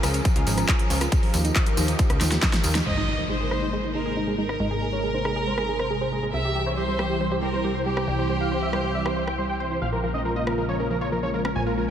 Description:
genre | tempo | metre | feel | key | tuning
uplifting trance | 138 BPM | 4/4 | straight | Ab major | A4 = 440 Hz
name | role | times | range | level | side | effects
lush unison pad | sustained chords | 0.0-11.9 s | C3 to Bb4 | -30 LUFS | equal | chorus, phaser, sidechain pumping
wide unison pluck | arpeggios | 0.0-11.9 s | F3 to C5 | -31 LUFS | right 2 dB | sidechain pumping, diffuse ambient delay
plucky analog bass | bass | 0.0-11.9 s | Ab1 to Eb2 | -29 LUFS | equal | sidechain pumping
big-room dance drum kit | drums | 0.0-11.5 s | crash cymbal, handclaps, hi-hat, rim click, snare drum | -30 LUFS | equal | overdrive, low-pass filter on hats, studio reverb, low-pass filter on snare, low-pass filter on cymbals
tambourine | percussion | 0.0-2.8 s | none | -35 LUFS | right 2 dB | none
electronic kick drum | drums | 0.3-2.5 s | none | -22 LUFS | equal | overdrive, studio reverb
dense compressed supersaw | melody | 2.9-11.8 s | Eb4 to Ab5 | -29 LUFS | equal | sidechain pumping, low-pass filter, diffuse ambient delay
clear chamber violin section | second line | 2.9-9.7 s | G4 to E5 | -30 LUFS | right 1 dB | tape echo
impact | sound effects | 2.9-4.6 s | none | -33 LUFS | equal | none
room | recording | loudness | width
moderate huge ambient reverb, RT60 4.1 s | dreamy mix soaked in reverb | -22 LUFS | side -9 dB against mid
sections
0.0-2.9 A section; 2.9-11.9 B section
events
drum fill 2.2-2.9; band accent 2.8; impact 2.9-4.6; filter sweep on supersaw synth 2.9-11.9; filter sweep on synth pluck 2.9-11.9; filter sweep on analog synth pad 2.9-11.9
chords
0.0 Db6; 1.1 Ebadd9; 2.9 Abadd9; 6.3 C; 9.8 Bbm7

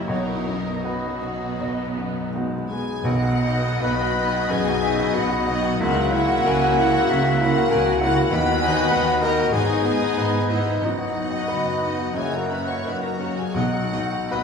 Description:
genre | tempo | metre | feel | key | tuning
classical, romantic movement for piano and orchestra | 73-100 BPM | 4/4 | rubato | B major | A4 = 439 Hz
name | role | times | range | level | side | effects
clear baby grand piano | melody | 0.0-14.4 s | B1 to D#5 | -24 LUFS | left 1 dB | none
rich studio violin section | melody | 0.0-14.4 s | F#4 to F#5 | -33 LUFS | left 3 dB | none
rich studio violin section | second line | 0.0-14.4 s | D#4 to C#6 | -32 LUFS | left 4 dB | none
rich studio viola section | accompaniment | 0.0-14.4 s | F#3 to F#4 | -31 LUFS | right 2 dB | none
warm studio cello section | bass | 0.0-14.4 s | F#2 to D#3 | -29 LUFS | right 3 dB | none
warm studio double bass section | bass | 0.0-14.4 s | F#1 to D#2 | -31 LUFS | right 2 dB | none
silver concert flute | second line | 0.1-14.4 s | B4 to G#5 | -30 LUFS | left 1 dB | none
warm clarinet | second line | 0.1-14.4 s | E4 to C#5 | -29 LUFS | left 4 dB | none
warm oboe | second line | 0.1-13.8 s | D#5 to F#5 | -31 LUFS | right 1 dB | none
mellow bassoon | accompaniment | 0.1-13.8 s | F#3 to E4 | -30 LUFS | right 2 dB | none
mellow French horn section | sustained chords | 0.1-14.4 s | F#3 to F#4 | -31 LUFS | left 4 dB | none
timpani | percussion | 3.0-4.1, 13.5-14.4 s | B2 | -28 LUFS | left 1 dB | none
room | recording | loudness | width
wet recital hall reverb, RT60 1.5 s | recorded in a church or concert hall | -19 LUFS | side -6 dB against mid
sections
0.0-3.0 A section; 3.0-14.4 A section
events
none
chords
0.1 B; 5.8 F#7/C#; 8.3 B/D#; 9.5 G#m; 10.8 B/F#; 12.2 F#; 13.5 B

